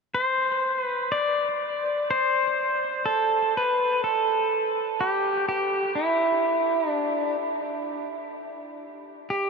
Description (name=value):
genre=ambient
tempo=62 BPM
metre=4/4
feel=straight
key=A minor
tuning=A4 = 440 Hz
part: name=pedal steel guitar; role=melody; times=0.1-9.5 s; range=E4 to D5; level=-23 LUFS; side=equal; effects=ping-pong delay
room=wet huge ambient reverb, RT60 7.7 s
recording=none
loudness=-22 LUFS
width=side -4 dB against mid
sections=0.2-9.5 A section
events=none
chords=none